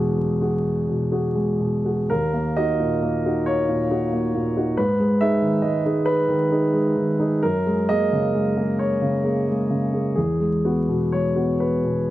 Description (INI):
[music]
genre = neoclassical minimalist piano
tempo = 45 BPM (dotted quarters)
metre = 6/8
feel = uneven beats, rubato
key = G# minor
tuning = A4 = 440 Hz
[part]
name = dark baby grand piano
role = solo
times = 0.0-12.1 s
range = D#2 to E5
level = -19 LUFS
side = equal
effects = none
[sound]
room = small room reverb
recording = dry, close 1970s-style studio recording, vinyl crackle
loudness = -19 LUFS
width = side -15 dB against mid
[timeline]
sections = 0.0-12.1 A section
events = none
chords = 0.0 Eadd9; 2.1 D#m; 4.8 G#m; 7.4 F#add9; 10.2 Eadd9